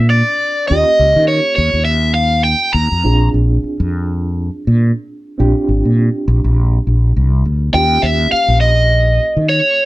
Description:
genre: straight-eighth soul blues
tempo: 102 BPM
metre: 4/4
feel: swing 56% on 16ths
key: Bb mixolydian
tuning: A4 = 440 Hz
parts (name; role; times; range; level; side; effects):
- overdriven semi-hollow guitar; melody; 0.0-3.3, 7.7-9.9 s; Db5 to Bb5; -13 LUFS; equal; phaser
- reed electric piano; accompaniment; 0.0-9.9 s; Bb3 to Ab4; -23 LUFS; right 2 dB; overdrive, fast tremolo
- mellow fretless electric bass; bass; 0.0-9.6 s; Ab1 to Eb3; -13 LUFS; equal; none
room: light reverb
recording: band playing live in one room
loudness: -12 LUFS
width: side -18 dB against mid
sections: 0.0-9.9 A section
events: none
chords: 0.0 Bb9; 0.7 Eb9; 3.0 Bb9; 7.7 Eb9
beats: 0.12 | 0.70 1.29 1.88 2.46 | 3.05 3.63 4.22 4.81 | 5.39 5.98 6.57 7.16 | 7.74 8.33 8.92 9.50

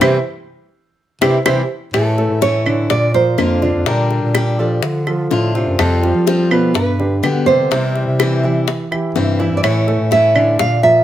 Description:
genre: latin, Cuban son and guajira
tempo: 125 BPM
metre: 4/4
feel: straight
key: unclear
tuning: A4 = 440 Hz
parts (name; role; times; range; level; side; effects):
- nylon-string guitar; melody; 0.0-11.0 s; E4 to F5; -17 LUFS; right 2 dB; none
- picked old ladder-braced acoustic guitar; accompaniment; 0.0-10.6 s; B2 to G4; -20 LUFS; left 3 dB; none
- dark grand piano; arpeggios; 0.0-11.0 s; B2 to E5; -20 LUFS; right 2 dB; none
- mellow bass clarinet; bass; 0.0-11.0 s; F2 to F3; -18 LUFS; equal; none
- bongos; percussion; 0.0-11.0 s; none; -21 LUFS; left 8 dB; none
- claves; percussion; 0.0-10.6 s; none; -23 LUFS; right 2 dB; none
room: light reverb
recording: none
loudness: -13 LUFS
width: side -12 dB against mid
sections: 0.0-1.9 A section; 1.9-11.0 B section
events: band accent 0.0-1.9; drum fill 1.2-1.9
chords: 0.0 C; 1.9 A; 2.9 Bb; 3.9 Gm/Bb; 4.8 Dm; 5.8 Fadd9; 6.8 G; 7.7 C; 9.6 A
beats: | 0.01 0.49 0.98 1.46 | 1.94 2.42 2.90 3.38 | 3.87 4.35 4.83 5.31 | 5.79 6.27 6.75 7.24 | 7.71 8.20 8.68 9.15 | 9.63 10.12 10.59

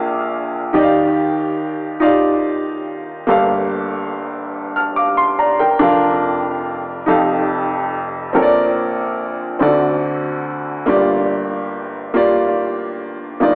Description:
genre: gospel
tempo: 47 BPM (dotted quarters)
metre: 6/8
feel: straight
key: unclear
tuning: A4 = 439 Hz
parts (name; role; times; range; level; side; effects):
- warm upright piano; solo; 0.0-13.6 s; F1 to F6; -15 LUFS; equal; tape echo
room: moderate echo chamber reverb, RT60 1.8 s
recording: echo-heavy mix, AM radio sound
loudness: -15 LUFS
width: side -30 dB against mid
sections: 0.0-13.6 A section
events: none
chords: 0.0 Bb7; 0.8 Ebmaj9; 3.3 Gm9; 5.8 Bb/F; 7.1 F9; 8.3 Bbmaj9; 9.6 D7; 10.9 Gm7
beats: | 0.76 2.02 | 3.29 4.55 | 5.82 7.08 | 8.35 9.61 | 10.88 12.15 | 13.41

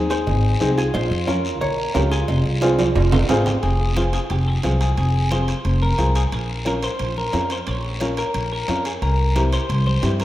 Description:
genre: latin, cumbia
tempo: 178 BPM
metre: 4/4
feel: straight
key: F minor, F harmonic minor from 3.6 s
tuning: A4 = 440 Hz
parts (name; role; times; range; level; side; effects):
- warm upright piano; accompaniment; 0.0-10.2 s; C4 to Bb4; -25 LUFS; left 1 dB; none
- upright bass; bass; 0.0-10.2 s; F1 to G2; -20 LUFS; equal; none
- hollow-body jazz guitar; melody; 0.1-3.3 s; Ab4 to Db5; -28 LUFS; equal; none
- semi-hollow electric guitar; second line; 0.1-10.2 s; F4 to Db5; -26 LUFS; left 1 dB; slapback echo
- guiro; percussion; 0.1-10.2 s; none; -33 LUFS; left 2 dB; none
- congas; percussion; 0.3-10.2 s; none; -31 LUFS; equal; none
- cowbell and timbales; percussion; 0.3-10.2 s; none; -28 LUFS; right 5 dB; none
room: moderate lush hall reverb, RT60 2.4 s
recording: rough home demo mix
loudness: -18 LUFS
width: side -14 dB against mid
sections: 0.0-3.6 A section; 3.6-10.2 B section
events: drum fill 2.6-3.6; clean electric guitar solo 3.6-10.2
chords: 0.0 Ab; 0.9 Bbm; 2.3 Fm; 6.3 Bbm; 9.0 C7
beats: 0.27 0.61 | 0.94 1.28 1.61 1.95 | 2.29 2.62 2.96 3.29 | 3.63 3.96 4.30 4.64 | 4.97 5.31 5.65 5.99 | 6.32 6.66 7.00 7.33 | 7.67 8.01 8.34 8.68 | 9.02 9.36 9.69 10.03

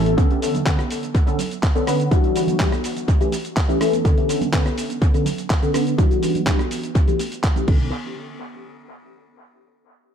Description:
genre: filtered disco house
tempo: 124 BPM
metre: 4/4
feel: straight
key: B minor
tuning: A4 = 440 Hz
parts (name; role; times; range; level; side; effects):
- funky polysynth comp; accompaniment; 0.0-7.9 s; D3 to B4; -22 LUFS; equal; chorus, phaser, sidechain pumping, low-pass filter, dub echo
- fingered electric bass; bass; 0.0-0.1, 7.7-7.9 s; A1 to B1; -23 LUFS; equal; sidechain pumping, low-pass filter
- dusty soul sampler-style drum kit; drums; 0.1-7.8 s; crash cymbal, handclaps, hi-hat, rim click, shaker; -29 LUFS; equal; overdrive, sidechain pumping on hats, sidechain pumping on perc, sidechain pumping on cymbals, dub echo
- congas and tambourine; percussion; 0.1-7.9 s; none; -32 LUFS; right 4 dB; sidechain pumping on perc, low-pass filter on perc, dub echo
- electronic kick drum; drums; 0.2-7.8 s; none; -18 LUFS; equal; none
room: light reverb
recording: echo-heavy mix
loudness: -17 LUFS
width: side -8 dB against mid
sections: 0.0-7.9 A section; 7.9-9.9 B section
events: filter sweep 0.0-7.9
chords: 0.2 Bm9; 2.1 Em9; 3.1 A7; 4.0 Bm9; 6.0 Em9; 7.0 A7; 7.7 Bm9; 7.9 N.C.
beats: | 0.18 0.66 1.15 1.63 | 2.11 2.60 3.08 3.56 | 4.05 4.53 5.02 5.50 | 5.98 6.47 6.95 7.44

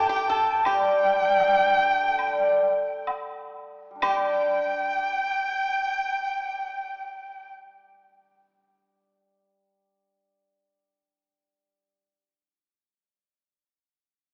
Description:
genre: chinese traditional, Chinese chamber ensemble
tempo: 62-86 BPM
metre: 4/4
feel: rubato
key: unclear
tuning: A4 = 440 Hz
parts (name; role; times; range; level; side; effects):
- dark erhu; melody; 0.0-7.5 s; G5 to A5; -29 LUFS; equal; none
- bright reedy dizi; second line; 0.0-7.5 s; G5; -32 LUFS; equal; none
- pipa; second line; 0.0-7.5 s; G4 to A4; -30 LUFS; equal; none
- hammered dulcimer; accompaniment; 0.0-12.0 s; A2 to D5; -28 LUFS; equal; none
- woodblock; percussion; 0.7-4.5 s; none; -35 LUFS; equal; none
room: wet concert hall reverb, RT60 2.3 s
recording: recorded in a church or concert hall, small speaker sound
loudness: -24 LUFS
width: mono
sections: 0.0-4.0 A section; 4.0-7.8 B section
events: slowing down 0.0-4.0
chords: none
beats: | 0.65 1.40 2.19 3.07 | 4.02 4.97 5.90 6.84

